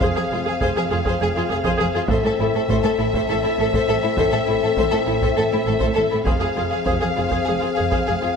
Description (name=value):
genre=cinematic, epic orchestral film score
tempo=201 BPM (eighths)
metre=7/8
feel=straight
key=A harmonic minor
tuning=A4 = 440 Hz
part: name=rich studio violin section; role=melody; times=0.0-8.4 s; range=E5 to F5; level=-26 LUFS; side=left 2 dB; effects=none
part: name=bright symphonic violin section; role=second line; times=0.0-8.3 s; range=E4 to C5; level=-28 LUFS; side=left 3 dB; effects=none
part: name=clear symphonic viola section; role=accompaniment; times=0.0-8.3 s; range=Ab4 to A4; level=-24 LUFS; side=right 2 dB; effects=none
part: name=mellow French horn section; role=sustained chords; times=0.0-8.4 s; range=C4 to A4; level=-24 LUFS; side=left 7 dB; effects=none
part: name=rich symphonic double bass section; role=bass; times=0.0-8.1 s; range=F1 to A1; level=-28 LUFS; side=right 4 dB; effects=none
part: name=warm symphonic cello section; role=bass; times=0.0-8.3 s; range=F2 to A2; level=-26 LUFS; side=right 3 dB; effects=none
part: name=taiko ensemble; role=drums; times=0.0-8.4 s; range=none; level=-27 LUFS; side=right 1 dB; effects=none
room=moderate scoring stage reverb, RT60 2.0 s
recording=none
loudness=-18 LUFS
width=side -6 dB against mid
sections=0.0-8.4 A section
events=none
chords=0.0 Fm; 2.1 Am; 6.3 Fm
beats=| 0.02 0.32 0.62 0.91 1.21 1.50 1.80 | 2.10 2.39 2.69 2.99 3.29 3.59 3.88 | 4.18 4.48 4.78 5.08 5.37 5.67 5.97 | 6.27 6.57 6.87 7.17 7.47 7.77 8.08